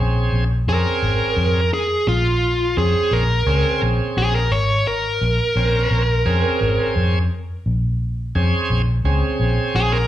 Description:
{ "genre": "blues", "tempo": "86 BPM", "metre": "4/4", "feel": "straight", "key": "Bb minor", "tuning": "A4 = 442 Hz", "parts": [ { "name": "bright tonewheel organ", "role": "accompaniment", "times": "0.0-10.0 s", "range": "C4 to Bb4", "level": "-23 LUFS", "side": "right 3 dB", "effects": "slow rotary speaker, overdrive, slapback echo" }, { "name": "vintage muted fingered electric bass", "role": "bass", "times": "0.0-10.1 s", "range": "Ab1 to F2", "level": "-19 LUFS", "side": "equal", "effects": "none" }, { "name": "dark smooth lead guitar", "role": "melody", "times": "0.7-10.1 s", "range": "F4 to Db5", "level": "-20 LUFS", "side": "equal", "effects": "overdrive, slapback echo, digital delay" } ], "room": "little or no reverb", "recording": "live gig heard through the venue's PA, club reverb", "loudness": "-16 LUFS", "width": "side -12 dB against mid", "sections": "0.0-10.1 A section", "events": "none", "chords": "0.0 Bbm7" }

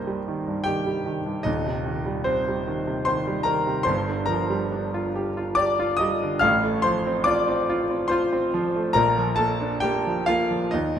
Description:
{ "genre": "classical, romantic nocturne for solo piano", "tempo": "72 BPM", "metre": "3/4", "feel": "uneven beats, rubato", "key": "Bb major from 3.9 s", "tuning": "A4 = 440 Hz", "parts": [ { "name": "clear concert grand piano", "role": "solo", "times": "0.0-11.0 s", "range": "Eb1 to F6", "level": "-21 LUFS", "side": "equal", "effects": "none" } ], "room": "wet recital hall reverb, RT60 1.6 s", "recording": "none", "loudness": "-21 LUFS", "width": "side -9 dB against mid", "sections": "0.0-11.0 A section", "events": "none", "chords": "0.0 Cm7; 1.5 Cm/Eb; 3.9 Gm7; 6.4 F/A; 9.0 Bb" }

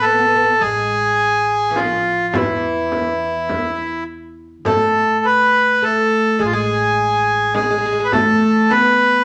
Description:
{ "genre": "Arabic maqam ensemble", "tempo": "104 BPM (eighths)", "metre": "10/8", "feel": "straight", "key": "unclear", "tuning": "A4 = 440 Hz", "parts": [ { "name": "accordion", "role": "melody", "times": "0.0-9.2 s", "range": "E4 to B4", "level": "-17 LUFS", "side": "equal", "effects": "none" }, { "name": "oud", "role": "second line", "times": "0.0-9.2 s", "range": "E3 to B3", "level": "-24 LUFS", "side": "equal", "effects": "none" }, { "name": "upright bass", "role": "bass", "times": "0.0-9.2 s", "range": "A1 to E2", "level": "-34 LUFS", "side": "equal", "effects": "none" }, { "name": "frame drum", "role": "percussion", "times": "1.8-9.0 s", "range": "none", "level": "-27 LUFS", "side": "equal", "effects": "none" } ], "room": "wet studio reverb, RT60 0.9 s", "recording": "none", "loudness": "-16 LUFS", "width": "mono", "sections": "0.0-9.2 A section", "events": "none", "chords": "none" }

